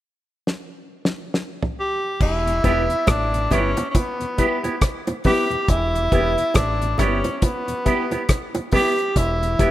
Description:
roots reggae; 69 BPM; 4/4; swing 58% on 16ths; E dorian; A4 = 440 Hz
damped 70s drum kit; drums; 0.5-9.7 s; crash cymbal, hi-hat, kick drum, rim click, snare drum, toms; -21 LUFS; equal
clear tenor saxophone; melody; 1.8-9.7 s; B3 to G4; -22 LUFS; equal; dub echo
deep dub fingered electric bass; bass; 2.2-9.7 s; E1 to A1; -24 LUFS; equal
mellow tonewheel organ; accompaniment; 2.5-9.7 s; E2 to E4; -31 LUFS; left 2 dB; overdrive, chorus vibrato, slow rotary speaker
electric guitar with an envelope filter; accompaniment; 2.6-9.7 s; B3 to G4; -27 LUFS; right 5 dB; dub echo
dark upright piano; stabs; 2.6-9.7 s; E4 to B4; -29 LUFS; left 5 dB
bongos; percussion; 2.6-9.7 s; -30 LUFS; right 2 dB
moderate lush hall reverb, RT60 2.3 s; rough home demo mix; -18 LUFS; side -14 dB against mid
0.0-2.2 A section; 2.2-9.7 B section
drum fill 0.5-2.2
0.0 N.C.; 2.2 Em

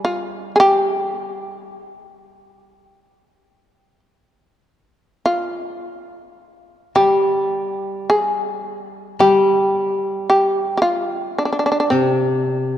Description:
japanese traditional, Japanese chamber music; 49-56 BPM; 4/4; rubato; G in sen; A4 = 440 Hz
shamisen; melody; 0.0-12.8 s; C4 to Ab4; -18 LUFS; equal
koto; accompaniment; 0.0-12.8 s; C3 to G3; -21 LUFS; left 1 dB
wet church reverb, RT60 3.0 s; dark, warm production; -16 LUFS; side -11 dB against mid
0.0-5.2 A section; 5.2-12.8 B section

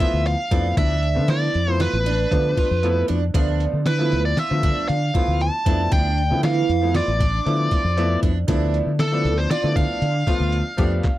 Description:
progressive instrumental, band music in an uneven meter; 117 BPM; 5/4; straight; D dorian; A4 = 443 Hz
biting lead guitar; melody; 0.0-11.2 s; A4 to A5; -24 LUFS; equal; overdrive
bright concert grand piano; accompaniment; 0.0-11.0 s; F3 to G4; -27 LUFS; left 3 dB
picked twelve-string acoustic guitar; arpeggios; 0.0-10.9 s; E3 to F4; -28 LUFS; right 10 dB
trip hop sampler-style drum kit; drums; 0.0-11.2 s; handclaps, hi-hat, kick drum, snare drum; -22 LUFS; equal
fretless electric bass; bass; 0.1-11.0 s; A1 to D3; -22 LUFS; equal; ensemble chorus
little or no reverb; dry, close 1970s-style studio recording; -18 LUFS; side -15 dB against mid
0.0-11.2 A section
0.0 Dm69

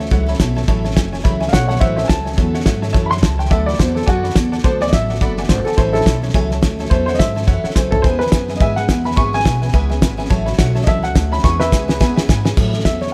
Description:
rockabilly; 212 BPM; 4/4; swing 58% on 8ths; A major; A4 = 438 Hz
dark upright piano; melody; 0.0-13.1 s; E4 to C#6; -23 LUFS; equal; tape echo
honky-tonk upright piano; accompaniment; 0.0-12.5 s; B4 to B5; -31 LUFS; equal
picked steel-string acoustic guitar; accompaniment; 0.0-13.1 s; A2 to A4; -27 LUFS; equal
upright bass; bass; 0.0-13.1 s; F#1 to A2; -23 LUFS; equal
cloth-damped thuddy drum kit; drums; 0.0-13.1 s; crash cymbal, hi-hat, kick drum, snare drum, toms; -19 LUFS; equal
light reverb; -16 LUFS; mono
0.0-12.6 A section
upright piano solo 0.0-12.6; drum fill 7.8, 11.4-12.6
0.0 A6; 3.5 D6; 5.8 A6; 8.0 E6; 10.3 A6; 11.4 E6; 12.6 A6

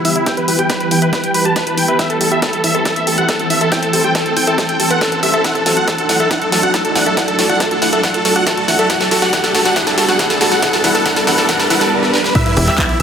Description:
uplifting trance; 139 BPM; 4/4; straight; E minor; A4 = 441 Hz
big supersaw lead; melody; 0.0-13.0 s; E4 to A5; -16 LUFS; right 1 dB; sidechain pumping, low-pass filter, tape echo
shimmering ambient pad; sustained chords; 0.0-13.0 s; E3 to D5; -19 LUFS; equal; chorus, built-in reverb, sidechain pumping
analog pluck; arpeggios; 0.0-13.0 s; E4 to E5; -22 LUFS; left 2 dB; chorus, cassette tape, sidechain pumping, tape echo
big-room dance drum kit; drums; 0.0-13.0 s; crash cymbal, handclaps, hi-hat, snare drum; -19 LUFS; equal; high-pass filter on snare, high-pass filter on hats, high-pass filter on cymbals
riser and sub drop; sound effects; 2.1-13.0 s; -23 LUFS; equal
electronic kick drum; drums; 0.3-12.9 s; -21 LUFS; equal; high-pass filter on kick
dark grand piano; second line; 12.4-13.0 s; E5 to E6; -22 LUFS; right 2 dB; sidechain pumping
tight sequencer bass; bass; 12.6-13.0 s; E1; -14 LUFS; equal; sidechain pumping
wet plate reverb, RT60 2.3 s; dreamy mix soaked in reverb; -12 LUFS; side -7 dB against mid
0.0-12.4 A section
build-up 0.0-12.4; drum fill 0.0-11.9, 12.0-12.4; filter sweep on synth arpeggio sound 0.0-12.4; riser 2.1-12.4; impact 12.4-13.0
0.0 Em; 2.0 Am; 5.4 D; 8.9 G; 12.4 Em

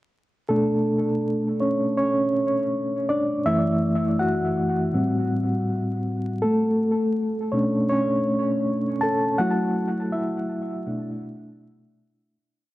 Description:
hip hop; 81 BPM; 4/4; swing 63% on 16ths; B minor; A4 = 440 Hz
mellow reed electric piano; solo; 0.5-12.4 s; F#2 to A5; -21 LUFS; equal; fast tremolo, cassette tape, tape echo
moderate echo chamber reverb, RT60 2.2 s; echo-heavy mix, vinyl crackle; -21 LUFS; side -16 dB against mid
0.5-12.3 A section
reed electric piano solo 0.5-12.3; fade-out 9.4-12.3
0.5 Bm9; 3.5 F#m7; 4.9 Am7; 6.4 Bm9; 9.4 F#m7; 10.9 Bm7

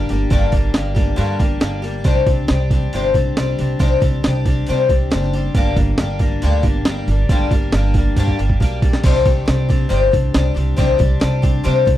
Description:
folk rock and heartland rock; 138 BPM; 4/4; straight; C minor; A4 = 439 Hz
picked twelve-string acoustic guitar; accompaniment; 0.0-12.0 s; G2 to G4; -20 LUFS; left 5 dB
upright bass; bass; 0.0-12.0 s; F#1 to C3; -19 LUFS; right 1 dB
breakbeat sampler-style drum kit; drums; 0.1-12.0 s; crash cymbal, hi-hat, kick drum, snare drum; -17 LUFS; right 1 dB
little or no reverb; dry, close 1970s-style studio recording; -14 LUFS; side -13 dB against mid
0.0-9.0 A section; 9.0-12.0 A section
drum fill 8.2-9.0
0.0 Gm; 2.1 Cmadd9; 5.5 Gm; 9.0 Cmadd9

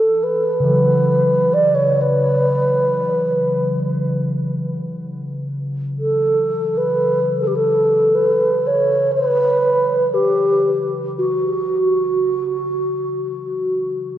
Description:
world meditative, free-time meditation music; free time; A4 = 443 Hz
mellow bass flute; melody; 0.0-14.2 s; F#4 to D5; -16 LUFS; right 1 dB
quartz singing bowl; texture; 0.0-8.1 s; C#3 to F#3; -23 LUFS; left 1 dB
wet huge ambient reverb, RT60 4.3 s; worn, warbling old tape, cassette tape, warbly pitch drift; -15 LUFS; side -12 dB against mid
0.0-14.2 A section

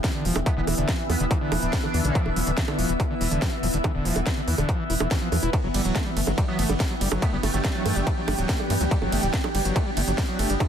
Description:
psychedelic trance; 142 BPM; 4/4; straight; E phrygian; A4 = 440 Hz
overtone-sweeping drone; sustained chords; 0.0-10.7 s; E3 to B3; -31 LUFS; right 1 dB; chorus, built-in reverb, phaser, sidechain pumping
screaming distorted acid line; riff; 0.0-10.6 s; D3 to E4; -30 LUFS; left 1 dB; distortion, chorus, auto-pan, cassette tape, sidechain pumping, tape echo
drum and bass drum kit; drums; 0.0-10.7 s; bongos, hi-hat, ride cymbal, snare drum; -30 LUFS; right 3 dB
electronic kick drum; drums; 0.0-10.7 s; -25 LUFS; equal; distortion, overdrive
granular cloud pad; texture; 0.0-10.7 s; B3 to G5; -31 LUFS; equal; built-in reverb, sidechain pumping
tight sequencer bass; bass; 0.3-10.6 s; D1 to G2; -26 LUFS; equal
metallic wobble bass; second line; 0.5-2.2, 6.5-8.1 s; A3 to D4; -36 LUFS; right 4 dB; chorus, sidechain pumping, high-pass filter, digital delay
digital ambience; dense, heavily limited modern master; -22 LUFS; side -8 dB against mid
0.0-10.7 A section
0.0 E5; 5.5 G5

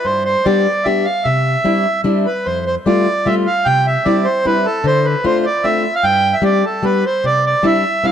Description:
musette waltz; 150 BPM; 3/4; straight; C major; A4 = 441 Hz
accordion; melody; 0.0-8.1 s; A4 to G5; -16 LUFS; right 2 dB
fingerpicked plugged-in steel-string acoustic guitar; accompaniment; 0.0-8.1 s; F2 to G4; -17 LUFS; left 2 dB
moderate spring reverb, RT60 2.2 s; dark, warm production; -13 LUFS; side -9 dB against mid
0.0-8.1 A section
0.1 G; 1.3 Cadd9; 2.5 Fadd9; 3.7 Cadd9; 4.9 Dm7; 6.0 Gsus4; 6.8 G; 7.2 Cadd9

